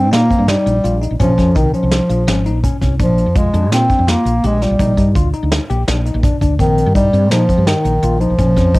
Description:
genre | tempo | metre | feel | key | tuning
progressive instrumental, band music in an uneven meter | 167 BPM | 5/4 | straight | unclear | A4 = 440 Hz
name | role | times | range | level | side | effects
warm bass clarinet | melody | 0.0-8.8 s | Eb3 to C4 | -15 LUFS | equal | cassette tape
bell-like tine electric piano | arpeggios | 0.0-8.8 s | C4 to G4 | -23 LUFS | left 6 dB | phaser, cassette tape
woody fretless electric bass | bass | 0.0-8.8 s | Ab1 to Bb2 | -16 LUFS | equal | ensemble chorus
soft brush drum kit | drums | 0.1-8.8 s | hi-hat, kick drum, snare drum | -17 LUFS | equal | cassette tape
room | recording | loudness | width
small room ambience | home recording on cassette | -12 LUFS | side -21 dB against mid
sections
0.0-8.8 A section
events
none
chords
0.0 Cm7 (rootless); 1.2 Dbmaj7/Bb; 3.0 Bb7; 4.8 Ebmaj7/Bb; 6.6 Cm7/Bb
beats
0.13 0.49 0.85 | 1.21 1.56 1.92 2.28 2.64 | 3.00 3.36 3.72 4.08 4.44 | 4.79 5.15 5.51 5.87 6.23 | 6.59 6.95 7.31 7.67 8.03 | 8.38 8.74

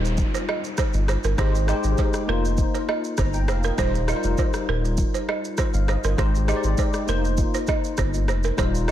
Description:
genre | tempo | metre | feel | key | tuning
afrobeats | 100 BPM | 4/4 | straight | unclear | A4 = 440 Hz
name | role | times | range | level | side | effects
bell-like tine electric piano | accompaniment | 0.0-8.9 s | G3 to Bb5 | -27 LUFS | left 4 dB | ensemble chorus
saturated sub bass | bass | 0.0-8.9 s | Eb1 to Ab1 | -23 LUFS | equal | none
downlifter | sound effects | 0.0-3.8 s | none | -39 LUFS | equal | none
afro-pop drum kit | drums | 0.1-8.9 s | kick drum, rim click, shaker | -26 LUFS | equal | none
balafon | riff | 0.3-8.9 s | Bb4 to Eb5 | -29 LUFS | right 8 dB | analog delay
room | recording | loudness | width
light reverb | none | -20 LUFS | side -12 dB against mid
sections
0.0-8.9 A section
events
none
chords
0.0 Eb69; 1.4 Abmaj7; 2.3 F7sus4; 3.8 Eb69; 6.2 Abmaj7; 7.1 F7sus4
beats
0.18 0.78 | 1.38 1.98 2.58 3.18 | 3.78 4.38 4.98 5.58 | 6.18 6.78 7.38 7.98 | 8.58

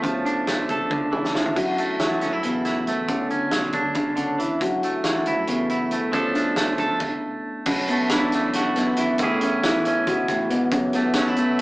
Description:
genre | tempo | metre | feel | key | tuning
math rock and midwest emo | 275 BPM (eighths) | 7/8 | straight | unclear | A4 = 440 Hz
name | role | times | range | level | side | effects
clean electric guitar | accompaniment | 0.0-11.6 s | F#2 to A4 | -25 LUFS | right 1 dB | none
handpan | arpeggios | 0.0-11.6 s | A3 to F#4 | -23 LUFS | left 1 dB | none
fingered electric bass | bass | 0.0-11.6 s | F#1 to E3 | -40 LUFS | equal | none
loose indie drum kit | drums | 0.0-11.6 s | crash cymbal, hi-hat, kick drum, snare drum, toms | -27 LUFS | equal | none
room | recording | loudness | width
moderate studio reverb, RT60 0.6 s | rough rehearsal-room recording, warm saturation, small speaker sound | -20 LUFS | side -20 dB against mid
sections
0.0-7.7 A section; 7.7-11.6 B section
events
drum fill 0.9-1.6; stop 7.0-7.7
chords
0.0 Dm; 1.6 F#m7; 3.1 Dmaj7; 4.6 F#m7; 6.1 Dm; 7.7 B7sus4; 9.2 Amaj7; 10.7 F#m7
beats
| 0.04 0.26 0.48 0.69 0.91 1.13 1.35 | 1.57 1.78 2.00 2.22 2.44 2.66 2.88 | 3.09 3.31 3.53 3.75 3.96 4.18 4.40 | 4.62 4.84 5.05 5.27 5.49 5.71 5.93 | 6.14 6.36 6.58 6.80 7.01 7.23 7.45 | 7.67 7.89 8.10 8.32 8.54 8.76 8.97 | 9.19 9.41 9.63 9.85 10.06 10.28 10.50 | 10.71 10.93 11.15 11.37 11.59

